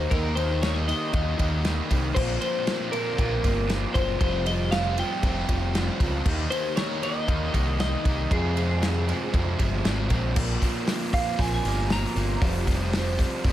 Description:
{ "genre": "indie rock", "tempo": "117 BPM", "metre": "4/4", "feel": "straight", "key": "unclear", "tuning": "A4 = 440 Hz", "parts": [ { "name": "twelve-string electric guitar", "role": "melody", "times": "0.0-13.4 s", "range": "Ab4 to Bb5", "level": "-30 LUFS", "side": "left 1 dB", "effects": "none" }, { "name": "crunchy overdriven guitar", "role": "riff", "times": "0.0-13.5 s", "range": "F2 to Ab4", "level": "-31 LUFS", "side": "left 5 dB", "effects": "none" }, { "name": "raw garage guitar", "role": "riff", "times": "0.0-13.5 s", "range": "F2 to C5", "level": "-32 LUFS", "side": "right 8 dB", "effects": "overdrive, lush chorus, tape echo" }, { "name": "growling picked electric bass", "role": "bass", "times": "0.0-13.5 s", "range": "F1 to F2", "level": "-27 LUFS", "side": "equal", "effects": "overdrive" }, { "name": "loose indie drum kit", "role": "drums", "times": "0.1-13.5 s", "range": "crash cymbal, hi-hat, kick drum, ride cymbal, snare drum", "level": "-27 LUFS", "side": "equal", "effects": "none" } ], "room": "light reverb", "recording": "none", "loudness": "-22 LUFS", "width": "side -13 dB against mid", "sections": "0.0-10.4 A section; 10.4-13.5 B section", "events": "clean electric guitar solo 10.4-13.5", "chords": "0.0 Eb; 2.2 Bbsus2; 4.2 Fsus2; 6.3 Eb; 8.3 Fm; 10.4 Bbsus2; 12.4 Fsus2", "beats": "| 0.11 0.62 1.13 1.65 | 2.16 2.67 3.18 3.69 | 4.21 4.72 5.23 5.75 | 6.26 6.77 7.28 7.80 | 8.31 8.82 9.33 9.85 | 10.36 10.87 11.39 11.90 | 12.41 12.93 13.44" }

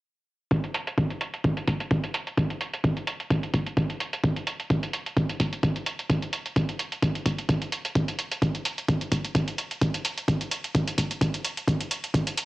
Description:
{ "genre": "house", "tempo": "129 BPM", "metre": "4/4", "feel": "swing 55% on 16ths", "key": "none", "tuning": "none", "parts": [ { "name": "electronic hi-hat", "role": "drums", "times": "0.5-12.5 s", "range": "none", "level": "-31 LUFS", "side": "right 1 dB", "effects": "low-pass filter on hats, cassette tape, low-pass filter on room" }, { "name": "electronic kick drum", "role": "drums", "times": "0.5-12.2 s", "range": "none", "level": "-24 LUFS", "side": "equal", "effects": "high-pass filter on kick, cassette tape, high-pass filter on room" } ], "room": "little or no reverb", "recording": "home recording on cassette", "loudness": "-25 LUFS", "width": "side -19 dB against mid", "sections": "0.5-12.5 A section", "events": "none", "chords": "none", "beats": "| 0.51 0.98 1.44 1.91 | 2.37 2.84 3.30 3.77 | 4.24 4.70 5.17 5.63 | 6.09 6.56 7.03 7.49 | 7.96 8.42 8.89 9.35 | 9.82 10.28 10.75 11.21 | 11.68 12.14" }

